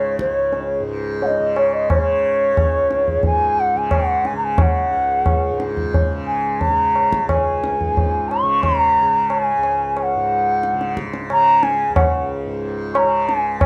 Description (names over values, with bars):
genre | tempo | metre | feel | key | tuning
indian classical, Hindustani | 89 BPM | 4/4 | straight | unclear | A4 = 440 Hz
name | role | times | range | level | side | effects
mellow bansuri | melody | 0.0-13.7 s | Db5 to Db6 | -20 LUFS | equal | none
tanpura | drone | 0.0-13.7 s | Db2 to Db3 | -28 LUFS | equal | none
tabla | percussion | 0.2-13.7 s | none | -23 LUFS | equal | none
room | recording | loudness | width
small room ambience | dry, close 1970s-style studio recording | -18 LUFS | mono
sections
0.0-13.7 A section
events
speeding up 0.0-13.7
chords
none